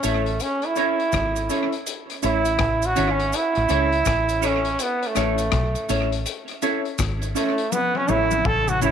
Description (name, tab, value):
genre	roots reggae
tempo	82 BPM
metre	4/4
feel	swing 63% on 16ths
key	A major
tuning	A4 = 440 Hz
part	brilliant trombone	melody	0.0-8.9 s	A3 to A4	-22 LUFS	right 2 dB	tape echo
part	clean electric guitar	accompaniment	0.0-8.9 s	C#4 to C#5	-28 LUFS	right 10 dB	phaser, tape echo
part	dark baby grand piano	stabs	0.0-8.9 s	C#4 to C#5	-30 LUFS	left 11 dB	none
part	deep dub fingered electric bass	bass	0.0-8.9 s	G#1 to C#2	-25 LUFS	equal	none
part	crunchy breakbeat drum kit	drums	0.0-8.9 s	hi-hat, kick drum, rim click, toms	-29 LUFS	left 7 dB	tape echo
part	cabasa	percussion	0.0-8.9 s	none	-34 LUFS	right 18 dB	none
room	moderate spring reverb, RT60 2.5 s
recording	1960s-style stereo with parts hard left and right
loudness	-20 LUFS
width	side -8 dB against mid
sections	0.0-8.9 A section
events	trombone solo 0.0-8.9; drum fill 7.7-8.9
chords	0.0 A